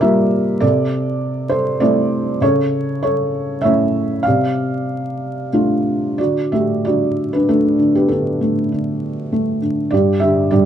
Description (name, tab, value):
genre	classical, lyrical solo piano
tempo	98 BPM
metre	3/4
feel	rubato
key	unclear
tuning	A4 = 440 Hz
part	felt-muted upright piano	solo	0.0-10.7 s	G2 to F5	-15 LUFS	right 1 dB	none
room	light reverb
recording	close, detailed microphones, vinyl crackle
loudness	-15 LUFS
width	side -9 dB against mid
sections	0.0-6.2 A section; 6.2-10.7 B section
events	none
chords	0.0 Gm7/C; 0.6 Am/C; 2.4 A; 4.3 Dm/C; 6.2 D; 9.9 G5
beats	0.02 | 0.62 1.22 1.81 | 2.42 3.02 3.63 | 4.25 4.87 5.52 | 6.19 6.85 7.48 | 8.10 8.72 9.33 | 9.93 10.53